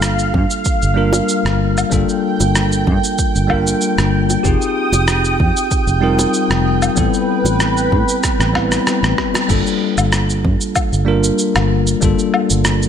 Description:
sunset chillout; 95 BPM; 4/4; swing 54% on 16ths; A4 = 437 Hz
bell-like tine electric piano; accompaniment; 0.0-12.9 s; G3 to B4; -18 LUFS; moving between left 8 dB and right 6 dB; auto-pan, digital delay
lush unison pad; sustained chords; 0.0-9.5 s; B4 to Eb6; -21 LUFS; equal; chorus
fingered electric bass; bass; 0.0-12.9 s; F1 to A2; -17 LUFS; equal
dusty soul sampler-style drum kit; drums; 0.0-12.9 s; cabasa, crash cymbal, rim click, woodblock; -21 LUFS; equal
electronic kick drum; drums; 0.3-12.2 s; -20 LUFS; right 1 dB; overdrive
bongos; percussion; 1.1-9.5 s; -24 LUFS; right 3 dB
light reverb; -13 LUFS; side -8 dB against mid
0.0-9.5 A section; 9.5-12.9 B section
drum fill 8.2-9.5; band accent 9.3-9.7
0.0 Gm9; 4.4 Fm9; 7.0 Am9; 9.5 Gm9

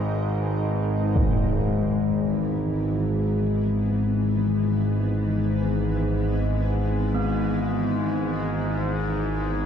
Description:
dark ambient drone; free time; A4 = 440 Hz
granular cloud pad; sustained chords; 0.0-9.7 s; E3 to B4; -31 LUFS; equal; built-in reverb
analog drone; drone; 0.0-9.7 s; G#1 to G#2; -23 LUFS; equal; chorus
impact; percussion; 1.2-1.4 s; -28 LUFS; equal; low-pass filter on sfx
gamelan-type bronze metallophone; arpeggios; 7.1-9.7 s; B3; -31 LUFS; right 4 dB; diffuse ambient delay
wet cathedral reverb, RT60 5.0 s; in a vast, echoing space, cassette tape, nothing above 10.3 kHz; -22 LUFS; side -8 dB against mid
0.0-9.7 A section
fade-out on ambient pad 0.0-9.7
0.0 G#m; 1.2 E

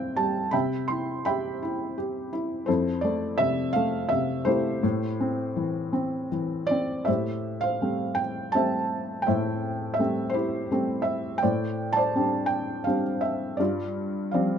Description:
classical, lyrical solo piano; 83 BPM; 3/4; rubato; A minor; A4 = 440 Hz
felt-muted upright piano; solo; 0.0-14.6 s; F2 to C6; -24 LUFS; equal
light reverb; close, detailed microphones; -24 LUFS; side -8 dB against mid
0.0-7.1 A section; 7.1-14.6 B section
0.0 Am7; 0.5 Cmaj7; 2.7 Fmaj9; 4.8 Am7; 11.4 D7sus4/A; 13.6 G7sus4

